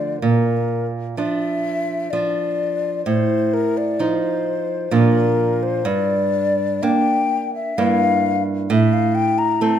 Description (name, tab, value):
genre	romantic duo for flute and classical guitar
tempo	64 BPM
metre	3/4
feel	rubato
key	unclear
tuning	A4 = 441 Hz
part	mellow hollow concert flute	melody	0.0-9.8 s	Bb4 to Bb5	-21 LUFS	left 6 dB	none
part	nylon-string guitar	accompaniment	0.0-9.8 s	G2 to E4	-19 LUFS	right 4 dB	none
room	moderate recital hall reverb, RT60 1.6 s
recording	minimal, uncompressed stereo recording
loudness	-17 LUFS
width	side -9 dB against mid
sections	0.0-9.8 A section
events	none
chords	0.2 Bb; 3.1 F7/A; 4.9 Bb; 5.9 Gm; 7.8 Edim/G; 8.7 Am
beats	| 0.22 1.17 2.12 | 3.06 4.00 4.92 | 5.85 6.83 7.77 | 8.70 9.62